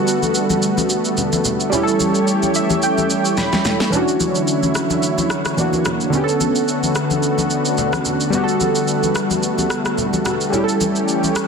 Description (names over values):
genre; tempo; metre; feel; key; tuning
amapiano; 109 BPM; 4/4; swing 55% on 16ths; unclear; A4 = 440 Hz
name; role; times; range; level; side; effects
warm analog keys; accompaniment; 0.0-11.5 s; D3 to B5; -19 LUFS; right 2 dB; chorus
lush unison pad; sustained chords; 0.0-11.5 s; D3 to C#5; -21 LUFS; left 1 dB; chorus
electronic shaker, snare drum and rim click; drums; 0.1-11.5 s; none; -23 LUFS; right 1 dB; soft clipping on snare
congas; percussion; 0.2-11.3 s; none; -26 LUFS; left 4 dB; none
room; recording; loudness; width
moderate digital room reverb, RT60 1.1 s; dense, heavily limited modern master; -16 LUFS; side -5 dB against mid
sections
0.0-11.5 A section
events
synth keys fill 2.3-3.9; drum fill 3.4-3.9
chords
0.0 Gmaj9; 1.7 A7; 3.9 Dmaj9; 5.6 F#7b13; 6.1 Bm9; 8.3 Gmaj9; 10.5 A7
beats
0.07 0.62 1.18 | 1.73 2.28 2.83 3.38 | 3.93 4.48 5.03 5.58 | 6.13 6.68 7.23 7.78 | 8.33 8.88 9.43 9.98 | 10.53 11.08